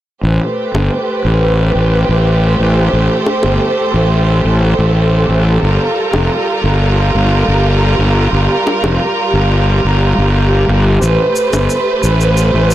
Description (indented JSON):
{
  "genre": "sunset chillout",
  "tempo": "89 BPM",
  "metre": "4/4",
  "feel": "straight",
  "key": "A phrygian",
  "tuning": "A4 = 440 Hz",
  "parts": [
    { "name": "warm studio string section", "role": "sustained chords", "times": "0.2-12.7 s", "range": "G3 to C5", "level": "-14 LUFS", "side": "right 2 dB", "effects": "none" },
    { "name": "fuzz fingered electric bass", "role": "bass", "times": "0.2-12.7 s", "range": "F1 to A1", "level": "-12 LUFS", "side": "equal", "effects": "overdrive" },
    { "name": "bongos", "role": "percussion", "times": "0.7-11.7 s", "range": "none", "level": "-19 LUFS", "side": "left 1 dB", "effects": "none" },
    { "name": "shaker", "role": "drums", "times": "11.0-12.7 s", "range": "none", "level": "-25 LUFS", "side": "left 2 dB", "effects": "none" }
  ],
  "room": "light reverb, small room reverb",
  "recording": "blown-out, overdriven recording, overdrive",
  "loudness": "-10 LUFS",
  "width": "side -13 dB against mid",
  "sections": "0.2-12.7 A section",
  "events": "none",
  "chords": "0.2 Am9; 5.6 Gm9; 11.0 Am9"
}